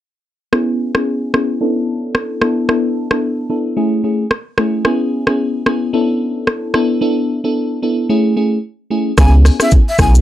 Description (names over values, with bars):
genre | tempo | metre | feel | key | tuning
afrobeats | 111 BPM | 4/4 | swing 58% on 16ths | unclear | A4 = 440 Hz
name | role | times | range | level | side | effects
bell-like FM electric piano | accompaniment | 0.5-10.2 s | A3 to A4 | -15 LUFS | equal | chorus, low-pass filter
afro-pop drum kit | drums | 0.5-10.2 s | hi-hat, kick drum, rim click, shaker | -14 LUFS | equal | none
breathy jazz flute | melody | 9.2-10.1 s | E5 to G#5 | -18 LUFS | left 1 dB | tape echo
warm sub bass | bass | 9.2-10.2 s | B1 to C#2 | -8 LUFS | equal | none
room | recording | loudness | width
light reverb | dark, warm production | -13 LUFS | side -13 dB against mid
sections
0.5-9.2 A section; 9.2-10.2 B section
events
filter sweep on FM electric piano 0.5-9.2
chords
0.5 C#m7; 1.6 Bm11; 2.4 E7sus4; 3.8 Amaj7; 4.9 C#m7; 5.9 Bm11; 6.7 E7sus4; 8.1 Amaj7; 9.2 C#m7